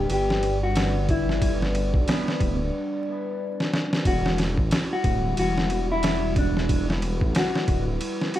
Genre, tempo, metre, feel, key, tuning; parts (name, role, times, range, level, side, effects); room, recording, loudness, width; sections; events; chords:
trip hop; 91 BPM; 4/4; swing 58% on 16ths; E minor; A4 = 440 Hz
mellow electric guitar; melody; 0.0-8.4 s; B3 to G4; -28 LUFS; left 1 dB; dub echo
dark analog pad; sustained chords; 0.0-8.4 s; G3 to D5; -30 LUFS; equal; chorus, phaser, vintage 12-bit sampler grit
dark detuned saw bass; bass; 0.0-8.0 s; D1 to B1; -26 LUFS; equal
trip hop sampler-style drum kit; drums; 0.1-8.4 s; kick drum, ride cymbal, snare drum; -25 LUFS; equal
little or no reverb; vinyl crackle; -21 LUFS; side -13 dB against mid
0.0-4.1 A section; 4.1-8.4 B section
break 2.7-4.1; drum fill 3.6-4.1
0.0 G; 4.1 Emadd9